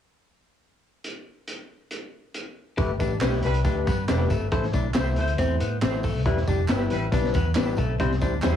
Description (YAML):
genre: uptempo 1960s-style soul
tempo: 138 BPM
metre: 4/4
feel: straight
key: G major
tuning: A4 = 436 Hz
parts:
  - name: crunchy breakbeat drum kit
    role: drums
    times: 1.0-8.5 s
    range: hi-hat, kick drum, snare drum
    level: -28 LUFS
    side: equal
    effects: none
  - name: overdriven tine electric piano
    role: accompaniment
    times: 2.8-8.6 s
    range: G3 to D5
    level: -29 LUFS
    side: left 5 dB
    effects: plate reverb
  - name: archtop guitar, miked and amplified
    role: riff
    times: 2.8-8.6 s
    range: A3 to A4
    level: -31 LUFS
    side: left 4 dB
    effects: none
  - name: vintage muted fingered electric bass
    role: bass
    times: 2.8-8.6 s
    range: E1 to A2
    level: -26 LUFS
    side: equal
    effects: none
  - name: tambourine and handclaps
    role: percussion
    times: 2.8-8.5 s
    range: none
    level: -40 LUFS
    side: right 4 dB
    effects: none
  - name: warm horn section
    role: second line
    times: 3.2-8.5 s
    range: G3 to C5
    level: -34 LUFS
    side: left 2 dB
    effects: tape echo, plate reverb
  - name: electric guitar through a small old amp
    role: stabs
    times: 3.2-8.6 s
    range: A3 to C5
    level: -32 LUFS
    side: right 5 dB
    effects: tremolo, tape echo, plate reverb
room: light reverb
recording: heavily compressed radio sound, multiband compression, cassette tape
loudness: -22 LUFS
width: side -9 dB against mid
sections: 1.0-2.8 A section; 2.8-8.6 B section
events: none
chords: 1.0 N.C.; 2.8 Gadd9; 4.5 Am; 6.3 Em; 8.0 C